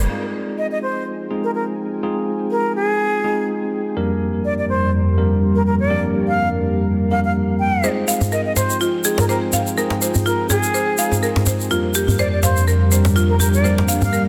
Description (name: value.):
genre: afro house.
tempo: 124 BPM.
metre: 4/4.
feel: swing 56% on 16ths.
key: F dorian.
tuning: A4 = 440 Hz.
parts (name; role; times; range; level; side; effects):
dark analog pad; sustained chords; 1.8-14.3 s; F2 to Ab5; -24 LUFS; equal; chorus.
tine electric piano; stabs; 0.0-14.3 s; F2 to Bb4; -24 LUFS; equal; tape echo.
bright reedy concert flute; melody; 0.6-14.2 s; Ab4 to G5; -25 LUFS; equal; tape echo.
buzzing marimba with medium hard mallets; arpeggios; 7.8-14.2 s; F4 to F5; -26 LUFS; equal; tape echo.
egg shaker; percussion; 7.8-14.2 s; none; -26 LUFS; equal; none.
djembe; percussion; 8.2-14.1 s; none; -24 LUFS; equal; none.
room: moderate lush hall reverb, RT60 2.1 s.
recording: dense, heavily limited modern master.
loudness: -19 LUFS.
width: mono.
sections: 0.1-14.3 A section.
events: filter sweep on analog synth pad 0.1-14.3.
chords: 0.1 Fm7; 4.0 Gm/F; 7.8 Fm7; 11.7 Gm/F.